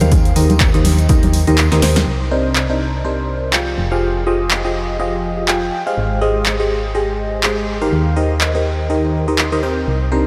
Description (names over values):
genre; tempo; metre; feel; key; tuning
piano house; 123 BPM; 4/4; swing 56% on 16ths; unclear; A4 = 442 Hz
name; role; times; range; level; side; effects
barking FM electric piano; riff; 0.0-10.3 s; C3 to G5; -20 LUFS; equal; phaser, sidechain pumping, analog delay
solid FM bass; bass; 0.0-10.3 s; F1 to Eb2; -21 LUFS; equal; sidechain pumping
punchy analog drum machine; drums; 0.0-9.5 s; handclaps, hi-hat, snare drum; -24 LUFS; equal; none
congas and tambourine; percussion; 0.0-2.0 s; none; -24 LUFS; equal; none
electronic kick drum; drums; 0.1-1.2 s; none; -17 LUFS; equal; none
room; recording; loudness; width
moderate huge ambient reverb, RT60 4.4 s; dreamy mix soaked in reverb; -16 LUFS; mono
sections
0.0-2.1 A section; 2.1-10.3 B section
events
kick drops out 1.6-2.1; drum fill 1.7-2.1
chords
0.1 Eb6; 2.1 Cm9; 3.8 Fm9; 6.0 Abmaj7; 7.9 Eb6